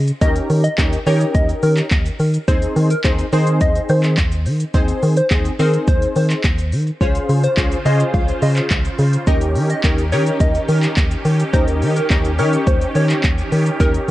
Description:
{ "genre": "dance-pop", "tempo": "106 BPM", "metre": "4/4", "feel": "straight", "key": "Ab major", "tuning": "A4 = 441 Hz", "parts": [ { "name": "organ-like FM bass", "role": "bass", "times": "0.0-14.1 s", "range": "Db2 to Eb3", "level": "-17 LUFS", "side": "equal", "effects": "sidechain pumping" }, { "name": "deep house drum kit", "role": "drums", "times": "0.1-14.1 s", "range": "handclaps, hi-hat, kick drum, shaker", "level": "-19 LUFS", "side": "equal", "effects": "none" }, { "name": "plucky unison lead", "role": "melody", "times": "0.2-13.9 s", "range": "Bb4 to F5", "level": "-23 LUFS", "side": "equal", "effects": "digital delay" }, { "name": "funky polysynth comp", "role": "accompaniment", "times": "0.2-14.1 s", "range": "C4 to Db5", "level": "-23 LUFS", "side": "left 1 dB", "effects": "chorus, sidechain pumping" }, { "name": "filtered supersaw swell", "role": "sustained chords", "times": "7.0-14.1 s", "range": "Db3 to C5", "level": "-26 LUFS", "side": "right 1 dB", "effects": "sidechain pumping" } ], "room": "light reverb", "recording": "worn, warbling old tape, cassette tape, warbly pitch drift, nothing above 10.3 kHz", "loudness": "-14 LUFS", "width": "side -16 dB against mid", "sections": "0.0-14.1 A section", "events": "none", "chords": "0.2 Eb7; 2.5 Ab/Eb; 7.0 Dbmaj7; 9.3 Eb7" }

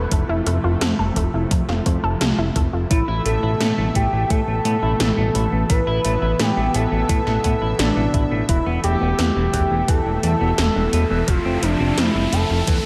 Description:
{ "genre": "synthwave", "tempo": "86 BPM", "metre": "4/4", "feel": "straight", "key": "A minor", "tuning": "A4 = 440 Hz", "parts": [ { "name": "lush unison pad", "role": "sustained chords", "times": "0.0-12.9 s", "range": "B2 to E5", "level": "-28 LUFS", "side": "equal", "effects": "chorus, sidechain pumping, shimmer reverb" }, { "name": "analog pluck", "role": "arpeggios", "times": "0.0-2.9 s", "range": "A3 to B4", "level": "-30 LUFS", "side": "equal", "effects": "chorus, cassette tape, tape echo, shimmer reverb" }, { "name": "fat analog bass", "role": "bass", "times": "0.0-12.8 s", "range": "E1 to A2", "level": "-24 LUFS", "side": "equal", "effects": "none" }, { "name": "80s electronic pad drums", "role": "drums", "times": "0.1-12.8 s", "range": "hi-hat, snare drum", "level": "-27 LUFS", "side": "equal", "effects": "overdrive" }, { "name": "electronic kick drum", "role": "drums", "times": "0.1-12.8 s", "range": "none", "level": "-23 LUFS", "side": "equal", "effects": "none" }, { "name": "expressive synth lead", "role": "melody", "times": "2.9-12.9 s", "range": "D4 to B4", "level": "-25 LUFS", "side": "equal", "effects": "chorus, tape echo, shimmer reverb" }, { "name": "semi-hollow electric guitar", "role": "riff", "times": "2.9-12.8 s", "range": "E3 to E4", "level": "-32 LUFS", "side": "equal", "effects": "analog chorus, tape echo, shimmer reverb" }, { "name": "riser", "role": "sound effects", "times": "9.8-12.9 s", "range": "none", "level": "-33 LUFS", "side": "equal", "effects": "none" } ], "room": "moderate plate reverb, RT60 2.0 s", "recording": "dreamy mix soaked in reverb", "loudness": "-19 LUFS", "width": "mono", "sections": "0.0-12.9 A section", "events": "riser 9.8-12.9", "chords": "0.1 Fmaj7; 2.9 Asus2; 8.5 Esus4; 11.3 Fmaj7" }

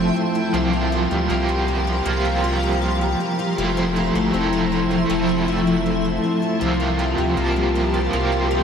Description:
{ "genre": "dream pop", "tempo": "79 BPM", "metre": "4/4", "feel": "straight", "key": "F major", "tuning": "A4 = 440 Hz", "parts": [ { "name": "overdriven semi-hollow guitar", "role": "accompaniment", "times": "0.0-8.6 s", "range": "C3 to A4", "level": "-23 LUFS", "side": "right 3 dB", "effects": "tremolo, lush chorus, shimmer reverb" }, { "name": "granular cloud pad", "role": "sustained chords", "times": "0.0-8.6 s", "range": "F3 to C6", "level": "-23 LUFS", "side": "equal", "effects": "built-in reverb, analog chorus, shimmer reverb" }, { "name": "picked twelve-string acoustic guitar", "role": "arpeggios", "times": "0.0-8.6 s", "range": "C3 to F4", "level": "-24 LUFS", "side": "left 4 dB", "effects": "analog chorus, ping-pong delay, shimmer reverb" }, { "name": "saturated sub bass", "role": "bass", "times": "0.0-8.6 s", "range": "F1 to D2", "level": "-25 LUFS", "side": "equal", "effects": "none" }, { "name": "backwards swelling texture", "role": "texture", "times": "0.0-6.9 s", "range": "G5 to A5", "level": "-34 LUFS", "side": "right 1 dB", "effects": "built-in reverb, wide subtle chorus, ping-pong delay, shimmer reverb" } ], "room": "wet cathedral reverb, RT60 6.0 s", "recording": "dreamy mix soaked in reverb", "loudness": "-18 LUFS", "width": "side -7 dB against mid", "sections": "0.0-8.6 A section", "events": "none", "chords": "0.0 Fmaj7; 0.5 C7sus4; 3.6 Fmaj7; 6.6 C7sus4" }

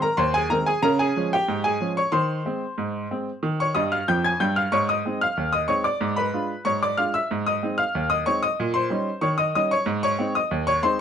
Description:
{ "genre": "ragtime piano", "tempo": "93 BPM", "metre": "2/4", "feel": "straight", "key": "Ab major", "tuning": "A4 = 438 Hz", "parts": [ { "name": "clear upright piano", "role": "solo", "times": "0.0-11.0 s", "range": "Eb2 to Ab6", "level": "-21 LUFS", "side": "equal", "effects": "none" } ], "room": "light reverb", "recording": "close, detailed microphones", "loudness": "-21 LUFS", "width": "side -8 dB against mid", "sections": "0.0-11.0 A section", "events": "upright piano fill 3.7-4.7", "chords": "0.0 Ab; 0.8 Db; 2.1 Ab/Eb; 3.4 Eb; 4.7 Ab; 6.0 Abdim7; 7.3 Ab; 8.6 Eb7/Bb; 9.9 Ab" }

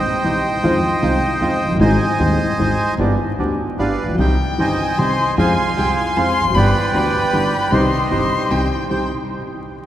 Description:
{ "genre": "tango", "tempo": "153 BPM", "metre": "3/4", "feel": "rubato", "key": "C harmonic minor", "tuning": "A4 = 440 Hz", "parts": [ { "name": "bandoneon", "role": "melody", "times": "0.0-9.1 s", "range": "G4 to C6", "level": "-21 LUFS", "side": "right 2 dB", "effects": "none" }, { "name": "dark upright piano", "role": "accompaniment", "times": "0.2-9.1 s", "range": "Eb1 to Ab4", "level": "-19 LUFS", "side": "equal", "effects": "none" }, { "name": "bandoneon", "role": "stabs", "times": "0.2-9.1 s", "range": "G3 to G4", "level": "-29 LUFS", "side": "right 3 dB", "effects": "none" }, { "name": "upright bass", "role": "bass", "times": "0.2-9.1 s", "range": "E1 to F2", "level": "-23 LUFS", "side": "equal", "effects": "none" }, { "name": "rich violin", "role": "second line", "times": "4.2-9.1 s", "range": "G5 to C6", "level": "-22 LUFS", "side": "left 3 dB", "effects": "none" } ], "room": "wet cathedral reverb, RT60 4.8 s", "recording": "recorded in a church or concert hall, vinyl crackle", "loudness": "-15 LUFS", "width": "side -12 dB against mid", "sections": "0.0-8.9 A section", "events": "none", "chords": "0.0 Cm; 0.6 Fm7; 1.8 Ab; 3.0 G; 4.2 Cm; 5.4 Fm; 6.6 G; 7.7 Cm" }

